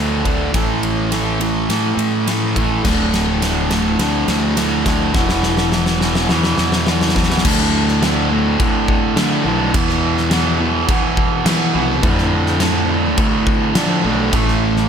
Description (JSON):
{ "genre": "post-rock", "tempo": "104 BPM", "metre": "4/4", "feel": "straight", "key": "D dorian", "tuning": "A4 = 438 Hz", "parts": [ { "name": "fuzz guitar", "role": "riff", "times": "0.0-14.9 s", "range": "D2 to A3", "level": "-17 LUFS", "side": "right 1 dB", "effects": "distortion" }, { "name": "fuzz fingered electric bass", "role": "bass", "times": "0.0-14.9 s", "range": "D1 to F3", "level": "-20 LUFS", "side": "equal", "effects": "overdrive" }, { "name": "huge arena drum kit", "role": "drums", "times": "0.3-14.8 s", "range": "crash cymbal, kick drum, ride cymbal, snare drum", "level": "-19 LUFS", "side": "left 1 dB", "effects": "none" } ], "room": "small room ambience", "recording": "none", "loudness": "-14 LUFS", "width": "side -7 dB against mid", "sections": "0.0-7.4 A section; 7.4-14.9 B section", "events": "build-up 0.0-7.4; drum fill 0.0-7.4", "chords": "0.0 D5; 0.5 A5; 2.8 D5; 5.2 E5; 7.4 D5; 9.7 E5; 12.0 Dm; 14.3 A5" }